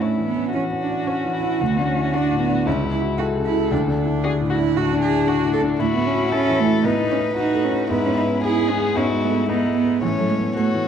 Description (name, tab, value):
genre	quick classical-period movement for piano quartet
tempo	114 BPM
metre	4/4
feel	rubato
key	E major from 5.8 s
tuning	A4 = 438 Hz
part	dark violin	melody	0.0-10.9 s	C#4 to A4	-25 LUFS	left 6 dB	none
part	warm cello	second line	0.0-10.9 s	E3 to A4	-22 LUFS	right 6 dB	none
part	warm violin	second line	0.0-10.9 s	E4 to C#5	-28 LUFS	left 2 dB	none
part	clear grand piano	accompaniment	0.0-10.9 s	C#2 to F#4	-22 LUFS	left 1 dB	none
room	wet recital hall reverb, RT60 1.3 s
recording	dark, warm production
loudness	-18 LUFS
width	side -8 dB against mid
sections	0.0-10.9 A section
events	none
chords	0.0 A; 1.6 D; 2.7 A7/C#; 3.7 D; 5.8 F#m7/A; 6.8 B7/A; 7.9 E/G#; 10.0 A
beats	0.01 0.54 1.07 | 1.61 2.14 2.67 3.19 | 3.72 4.24 4.76 5.28 | 5.80 6.32 6.85 7.37 | 7.91 8.44 8.96 9.49 | 10.03 10.56